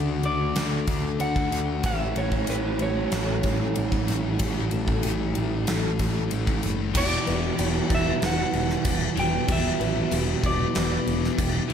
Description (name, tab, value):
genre	rock, shoegaze and dream pop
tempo	94 BPM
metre	4/4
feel	straight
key	unclear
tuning	A4 = 440 Hz
part	electric guitar through a small old amp	melody	0.0-11.7 s	B4 to G5	-30 LUFS	right 1 dB	digital delay
part	picked twelve-string acoustic guitar	arpeggios	0.0-11.7 s	F#4 to B4	-36 LUFS	left 8 dB	analog chorus, digital delay
part	overdriven electric guitar	riff	0.0-11.7 s	E2 to G4	-30 LUFS	right 8 dB	reverse reverb
part	thick fuzz guitar	riff	0.0-11.7 s	E2 to D4	-30 LUFS	left 9 dB	distortion, lush chorus
part	growling picked electric bass	bass	0.0-11.7 s	E1 to D2	-29 LUFS	equal	overdrive
part	gated 80s drum kit	drums	0.2-11.7 s	crash cymbal, kick drum, ride cymbal, snare drum	-29 LUFS	equal	none
part	crunchy overdriven guitar	riff	6.9-11.7 s	E2 to E3	-30 LUFS	equal	none
part	tambourine	percussion	7.6-11.5 s	none	-40 LUFS	right 15 dB	none
room	light reverb, studio reverb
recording	none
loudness	-22 LUFS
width	side -8 dB against mid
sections	0.0-7.0 A section; 7.0-11.7 B section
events	none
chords	0.0 D; 1.8 A7; 7.0 Em7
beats	0.56 1.20 | 1.84 2.48 3.12 3.77 | 4.40 5.04 5.68 6.32 | 6.95 7.59 8.22 8.86 | 9.49 10.12 10.76 11.39